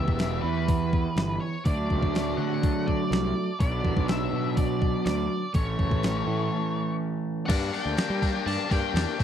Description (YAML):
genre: indie rock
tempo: 124 BPM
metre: 4/4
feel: straight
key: unclear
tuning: A4 = 440 Hz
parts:
  - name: octave-fuzz lead guitar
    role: melody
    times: 0.0-9.2 s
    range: B4 to A5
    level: -33 LUFS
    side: equal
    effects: distortion, slapback echo
  - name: overdriven semi-hollow guitar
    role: riff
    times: 0.0-9.2 s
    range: E3 to A4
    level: -32 LUFS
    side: left 11 dB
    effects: spring reverb
  - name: overdriven semi-hollow guitar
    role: riff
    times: 0.0-7.5 s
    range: E3 to G4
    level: -30 LUFS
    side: right 10 dB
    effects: wide subtle chorus
  - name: fuzz picked electric bass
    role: bass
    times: 0.0-9.2 s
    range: E1 to G3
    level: -30 LUFS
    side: equal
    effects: overdrive
  - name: crisp 8-bit digital drum machine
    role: drums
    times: 0.1-9.2 s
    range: crash cymbal, hi-hat, kick drum, snare drum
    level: -26 LUFS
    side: equal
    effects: overdrive
  - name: barky tine electric piano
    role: second line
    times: 7.5-9.2 s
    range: D5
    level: -39 LUFS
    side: right 5 dB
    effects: none
  - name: percussive tonewheel organ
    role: sustained chords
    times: 7.5-9.2 s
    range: A4 to D6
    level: -42 LUFS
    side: equal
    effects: none
room: digital ambience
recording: dry, close 1970s-style studio recording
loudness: -24 LUFS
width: side -9 dB against mid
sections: 0.0-7.5 A section; 7.5-9.2 B section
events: break 6.5-7.5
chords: 0.0 Em; 1.7 D; 3.6 Bm; 5.6 A; 7.5 Gm